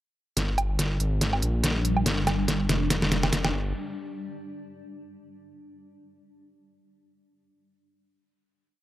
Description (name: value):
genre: deep dubstep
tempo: 142 BPM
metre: 4/4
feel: swing 56% on 16ths, half-time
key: G phrygian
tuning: A4 = 439 Hz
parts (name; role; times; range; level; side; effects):
- granular cloud pad; sustained chords; 1.7-3.5 s; G3 to D4; -33 LUFS; left 1 dB; built-in reverb
- dark detuned saw bass; bass; 0.4-3.7 s; F1 to Bb1; -26 LUFS; equal; none
- dubstep drum kit; drums; 0.4-3.5 s; hi-hat, snare drum, woodblock; -26 LUFS; equal; none
- electronic kick drum; drums; 0.4-3.6 s; none; barely audible; none; none
room: light reverb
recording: none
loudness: -24 LUFS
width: side -15 dB against mid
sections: 0.4-3.7 build; 3.7-5.4 final hit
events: build-up 0.4-3.7; drum fill 0.4-3.7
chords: 0.4 G5; 3.5 N.C.